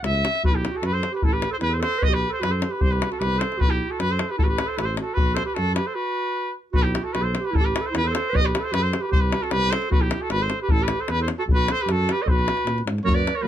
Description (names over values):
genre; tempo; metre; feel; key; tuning
balkan folk, Balkan brass band; 152 BPM; 2/4; straight; unclear; A4 = 436 Hz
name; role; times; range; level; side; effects
warm trumpet; melody; 0.0-13.5 s; G4 to E5; -25 LUFS; left 1 dB; none
dark tuba; bass; 0.0-13.5 s; G#1 to A#2; -26 LUFS; equal; none
davul; percussion; 0.0-13.4 s; none; -24 LUFS; left 2 dB; none
mellow clarinet; second line; 0.5-13.5 s; E4 to B4; -29 LUFS; right 6 dB; none
dark euphonium; accompaniment; 13.1-13.5 s; F#3; -30 LUFS; right 6 dB; none
warm French horn; accompaniment; 13.1-13.5 s; A#3; -30 LUFS; left 5 dB; none
room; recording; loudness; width
light reverb; close, detailed microphones; -20 LUFS; side -11 dB against mid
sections
0.4-6.8 A section; 6.8-13.1 A section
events
break 6.0-6.8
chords
0.4 B5; 1.2 A5; 2.0 B5; 2.8 Am9/C; 3.6 B5; 4.4 Am13; 5.2 B5; 6.0 N.C.; 6.8 Am13/B; 7.5 A5; 8.3 B5; 9.1 Am9/C; 9.9 G#7alt; 10.7 A5; 11.5 B5; 12.7 G#m9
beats
0.03 | 0.43 0.83 | 1.23 1.62 | 2.02 2.42 | 2.81 3.21 | 3.60 4.00 | 4.39 4.79 | 5.18 5.57 | 5.96 6.36 | 6.75 7.14 | 7.54 7.93 | 8.32 8.72 | 9.11 9.51 | 9.90 10.29 | 10.69 11.09 | 11.48 11.87 | 12.27 12.66 | 13.06 13.45